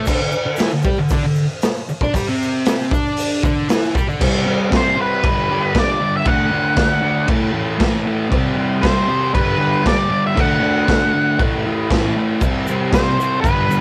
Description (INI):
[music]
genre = garage rock duo or trio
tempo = 117 BPM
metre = 4/4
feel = straight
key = unclear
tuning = A4 = 440 Hz
[part]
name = fuzz guitar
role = riff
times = 0.0-13.8 s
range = G2 to D5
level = -21 LUFS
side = equal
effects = distortion
[part]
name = raw garage drum kit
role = drums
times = 0.1-13.6 s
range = crash cymbal, hi-hat, kick drum, snare drum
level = -21 LUFS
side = equal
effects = cassette tape
[part]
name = tube shaker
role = percussion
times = 0.1-4.2, 12.4-13.8 s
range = none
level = -44 LUFS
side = equal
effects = none
[part]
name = octave-fuzz lead guitar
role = melody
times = 4.8-13.8 s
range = B4 to F#5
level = -21 LUFS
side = equal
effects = distortion, cassette tape, tape echo
[sound]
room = little or no reverb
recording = home recording on cassette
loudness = -17 LUFS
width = mono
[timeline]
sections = 0.1-4.2 A section; 4.2-13.8 B section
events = none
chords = 0.1 Cadd9; 4.2 C5; 5.2 G; 6.3 D; 7.3 A5; 8.3 C5; 9.3 G; 10.4 D; 11.4 A5; 12.4 C5